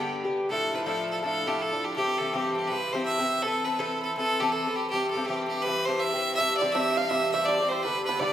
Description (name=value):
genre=celtic folk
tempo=163 BPM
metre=4/4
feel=swing 62% on 8ths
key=unclear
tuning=A4 = 440 Hz
part: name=bright fiddle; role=melody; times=0.0-8.3 s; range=G4 to F5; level=-27 LUFS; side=right 1 dB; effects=tape echo
part: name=Irish bouzouki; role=accompaniment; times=0.0-8.3 s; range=G2 to B4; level=-28 LUFS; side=left 2 dB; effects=none
part: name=bluegrass banjo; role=second line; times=6.4-8.3 s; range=B4 to F5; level=-30 LUFS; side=right 5 dB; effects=none
room=wet recital hall reverb, RT60 1.8 s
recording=none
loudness=-24 LUFS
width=side -10 dB against mid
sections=0.5-8.3 A section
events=none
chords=0.0 G; 0.5 Dmadd9; 2.0 C; 3.4 Amadd9; 4.9 C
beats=0.13 | 0.50 0.87 1.24 1.60 | 1.97 2.34 2.71 3.07 | 3.44 3.81 4.18 4.55 | 4.91 5.28 5.65 6.02 | 6.39 6.75 7.12 7.49 | 7.86 8.23